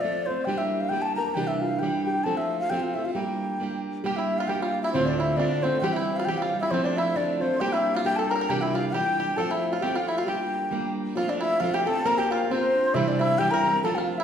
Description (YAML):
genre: celtic folk, Celtic polka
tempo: 135 BPM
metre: 2/4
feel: swing 57% on 8ths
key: G dorian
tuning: A4 = 441 Hz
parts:
  - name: mellow wooden flute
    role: melody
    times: 0.0-14.2 s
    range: C5 to Bb5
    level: -26 LUFS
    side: left 2 dB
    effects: none
  - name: picked plugged-in old ladder-braced acoustic guitar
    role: accompaniment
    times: 0.0-14.2 s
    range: D2 to Bb4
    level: -28 LUFS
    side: right 4 dB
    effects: none
  - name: buzzing kalimba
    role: second line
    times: 0.5-14.2 s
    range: C4 to Bb4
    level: -32 LUFS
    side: left 2 dB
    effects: none
  - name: bluegrass banjo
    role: second line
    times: 4.1-14.2 s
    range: C4 to Bb4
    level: -33 LUFS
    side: right 2 dB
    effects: none
room: wet recital hall reverb, RT60 1.4 s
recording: recorded in a church or concert hall, studio reverb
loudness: -23 LUFS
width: side -8 dB against mid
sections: 0.0-4.0 A section; 4.0-11.2 A section; 11.2-14.2 B section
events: none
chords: 0.5 Gm; 1.4 Cadd9; 2.3 F; 3.2 Gm; 4.9 Dm7; 5.8 C/E; 6.7 F; 7.6 Gm; 8.5 Cadd9; 9.4 F; 10.3 Gm; 11.2 F; 12.1 Bbsus2; 12.9 C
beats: 0.03 | 0.48 0.92 | 1.37 1.81 | 2.26 2.71 | 3.15 3.60 | 4.04 4.49 | 4.94 5.38 | 5.83 6.27 | 6.72 7.16 | 7.61 8.05 | 8.50 8.94 | 9.39 9.83 | 10.28 10.72 | 11.17 11.61 | 12.06 12.50 | 12.95 13.39 | 13.84